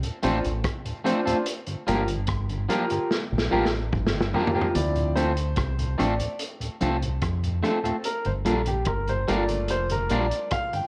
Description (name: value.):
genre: roots reggae.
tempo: 73 BPM.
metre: 4/4.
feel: straight.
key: D minor.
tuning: A4 = 440 Hz.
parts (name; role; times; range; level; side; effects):
mellow tonewheel organ; accompaniment; 0.0-10.8 s; D2 to F4; -33 LUFS; equal; slow rotary speaker.
deep dub fingered electric bass; bass; 0.0-10.3 s; F1 to F2; -30 LUFS; equal; none.
vintage drum kit; drums; 0.0-10.9 s; hi-hat, kick drum, rim click, snare drum, toms; -32 LUFS; equal; none.
electric guitar at the edge of break-up; accompaniment; 0.2-10.3 s; F3 to Bb4; -32 LUFS; equal; spring reverb, plate reverb.
clear upright piano; stabs; 0.2-10.9 s; F3 to G5; -30 LUFS; equal; plate reverb.
room: moderate studio reverb, RT60 0.6 s.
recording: cassette tape.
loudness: -26 LUFS.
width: mono.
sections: 0.0-4.8 A section; 4.8-10.9 B section.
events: drum fill 3.1-4.8; upright piano solo 4.8-10.9.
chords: 0.0 Dm7; 1.5 Gm7; 4.8 Dm7; 8.0 Gm7.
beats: 0.64 | 1.46 2.29 3.11 3.93 | 4.75 5.58 6.40 7.22 | 8.05 8.87 9.70 10.52.